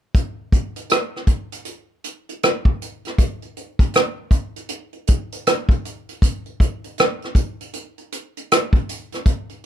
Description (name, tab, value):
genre	R&B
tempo	79 BPM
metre	4/4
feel	swing 63% on 16ths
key	none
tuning	none
part	unplugged drum kit	drums	0.1-9.6 s	hi-hat, kick drum, rim click	-17 LUFS	equal	none
room	little or no reverb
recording	none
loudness	-18 LUFS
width	side -10 dB against mid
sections	0.1-9.7 A section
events	none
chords	none